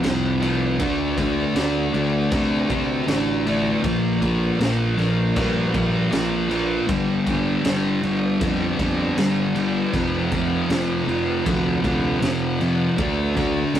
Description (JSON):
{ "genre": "quiet-loud alternative rock", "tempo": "79 BPM", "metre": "4/4", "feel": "straight", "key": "unclear", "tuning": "A4 = 435 Hz", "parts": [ { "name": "thick fuzz guitar", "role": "riff", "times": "0.0-13.8 s", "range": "F2 to D4", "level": "-20 LUFS", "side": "equal", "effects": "distortion" }, { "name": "fuzz fingered electric bass", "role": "bass", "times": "0.0-13.8 s", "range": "F1 to C3", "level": "-26 LUFS", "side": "equal", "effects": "overdrive" }, { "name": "raw garage drum kit", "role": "drums", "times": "0.0-13.8 s", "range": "crash cymbal, kick drum, snare drum", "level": "-28 LUFS", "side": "equal", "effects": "none" } ], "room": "moderate studio reverb, RT60 0.6 s", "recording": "rough rehearsal-room recording", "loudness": "-19 LUFS", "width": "side -10 dB against mid", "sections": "0.0-13.8 A section", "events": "none", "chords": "0.0 F5; 0.8 D5; 3.8 Bb5; 6.9 G5; 9.9 F5; 13.0 D5" }